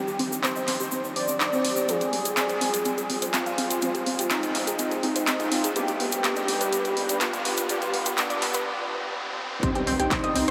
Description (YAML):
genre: melodic techno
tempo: 124 BPM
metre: 4/4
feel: straight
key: C harmonic minor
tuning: A4 = 440 Hz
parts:
  - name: fat analog lead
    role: melody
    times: 0.0-10.5 s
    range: D4 to D5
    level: -31 LUFS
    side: equal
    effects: lush chorus, sidechain pumping, diffuse ambient delay
  - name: dark analog pad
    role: sustained chords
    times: 0.0-10.5 s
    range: G3 to Ab5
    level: -38 LUFS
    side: equal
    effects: chorus, sidechain pumping
  - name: riser and impact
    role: sound effects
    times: 0.0-10.5 s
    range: none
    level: -39 LUFS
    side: equal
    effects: none
  - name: warbly dusty pluck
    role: arpeggios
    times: 0.1-10.5 s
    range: B3 to Eb6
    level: -33 LUFS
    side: equal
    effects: chorus, sidechain pumping, diffuse ambient delay
  - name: tube shaker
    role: percussion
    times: 0.1-8.6 s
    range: none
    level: -37 LUFS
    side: equal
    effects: none
  - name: house drum kit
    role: drums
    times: 0.2-10.5 s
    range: handclaps, hi-hat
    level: -31 LUFS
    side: equal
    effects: overdrive, high-pass filter on hats, high-pass filter on snare, high-pass filter on room
  - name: analog synth brass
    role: stabs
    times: 1.5-9.7 s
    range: F3 to C5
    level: -38 LUFS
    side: equal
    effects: none
  - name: electronic kick drum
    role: drums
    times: 9.6-10.2 s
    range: none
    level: -31 LUFS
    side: equal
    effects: overdrive
  - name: round analog bass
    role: bass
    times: 9.8-10.5 s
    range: C2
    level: -37 LUFS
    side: equal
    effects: sidechain pumping
room: wet huge ambient reverb, RT60 8.6 s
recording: dreamy mix soaked in reverb, high-pass filter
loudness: -26 LUFS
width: mono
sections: 0.0-9.6 A section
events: build-up 0.0-9.6; filter sweep on synth arpeggio sound 0.0-9.6; filter sweep on analog synth pad 0.0-9.6; break 8.7-9.6; impact 9.6-10.5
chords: 0.0 Cm; 1.9 Fmadd9; 5.8 G; 9.6 Cm